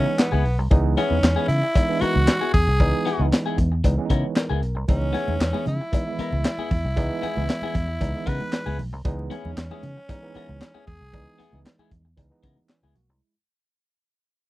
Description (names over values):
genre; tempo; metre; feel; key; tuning
funk; 115 BPM; 4/4; straight; C# dorian; A4 = 441 Hz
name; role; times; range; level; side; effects
growling tenor saxophone; melody; 0.0-11.6 s; B3 to B4; -27 LUFS; equal; none
clean electric guitar; accompaniment; 0.0-13.1 s; B3 to A#4; -30 LUFS; left 6 dB; none
tine electric piano; stabs; 0.0-13.3 s; D#3 to C#5; -29 LUFS; right 3 dB; medium stereo tremolo
vintage muted fingered electric bass; bass; 0.0-13.2 s; B1 to C#3; -24 LUFS; equal; none
crunchy breakbeat drum kit; drums; 0.2-13.1 s; handclaps, hi-hat, kick drum, snare drum; -21 LUFS; equal; none
cowbell; percussion; 0.2-12.8 s; none; -34 LUFS; left 6 dB; none
congas; percussion; 4.9-13.1 s; none; -39 LUFS; right 5 dB; none
room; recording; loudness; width
little or no reverb; dry, close 1970s-style studio recording; -20 LUFS; side -17 dB against mid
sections
0.0-13.2 A section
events
fade-out 2.4-13.2; tine electric piano fill 3.8-4.9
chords
0.0 C#m7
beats
0.19 | 0.71 1.23 1.75 2.28 | 2.80 3.32 3.84 4.36 | 4.89 5.41 5.93 6.45 | 6.97 7.49 8.01 8.53 | 9.05 9.57 10.09 10.61 | 11.13 11.65 12.18 12.70